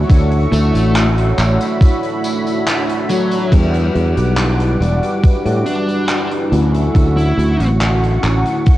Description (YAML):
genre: vaporwave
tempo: 70 BPM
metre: 4/4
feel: straight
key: D major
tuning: A4 = 440 Hz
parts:
  - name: mellow synth brass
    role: accompaniment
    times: 0.0-8.8 s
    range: D3 to C#5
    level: -19 LUFS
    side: equal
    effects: wide subtle chorus, analog delay
  - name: lush unison pad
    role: sustained chords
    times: 0.0-8.8 s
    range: G3 to D6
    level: -24 LUFS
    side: equal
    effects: chorus
  - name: sustaining fretless electric bass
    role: bass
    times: 0.0-8.4 s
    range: E1 to A2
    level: -15 LUFS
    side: equal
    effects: tube saturation
  - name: big rock drum kit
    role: drums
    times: 0.1-8.8 s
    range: crash cymbal, handclaps, hi-hat, tambourine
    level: -24 LUFS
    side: equal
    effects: gated reverb
  - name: electronic kick drum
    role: drums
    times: 0.1-8.8 s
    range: none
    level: -9 LUFS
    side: equal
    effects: none
  - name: smooth overdriven lead guitar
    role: melody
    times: 0.5-7.7 s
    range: F#3 to E4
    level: -23 LUFS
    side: left 1 dB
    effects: vintage 12-bit sampler grit, tape echo
  - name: clean electric guitar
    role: riff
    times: 3.5-8.6 s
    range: F#3 to F#4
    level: -27 LUFS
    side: left 1 dB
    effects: lush chorus, low-pass filter, analog delay
room: light reverb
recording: cassette tape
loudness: -12 LUFS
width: side -15 dB against mid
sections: 0.0-3.5 A section; 3.5-8.8 B section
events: none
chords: 0.0 Dmaj9; 3.5 Em9; 6.5 Dmaj9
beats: | 0.10 0.95 1.81 2.67 | 3.52 4.38 5.24 6.10 | 6.95 7.81 8.67